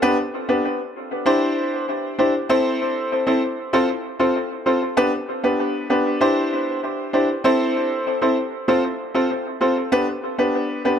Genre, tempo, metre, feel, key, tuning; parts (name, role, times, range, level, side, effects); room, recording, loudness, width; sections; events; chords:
dancehall; 97 BPM; 4/4; straight; A4 = 440 Hz
bright grand piano; solo; 0.0-11.0 s; B3 to C5; -18 LUFS; equal; dub echo
wet spring reverb, RT60 2.5 s; echo-heavy mix; -18 LUFS; side -8 dB against mid
0.0-6.2 A section; 6.2-11.0 B section
0.0 G; 1.3 Cadd9; 2.5 Am; 3.7 F; 5.0 G; 6.2 Cadd9; 7.4 Am; 8.7 F; 9.9 G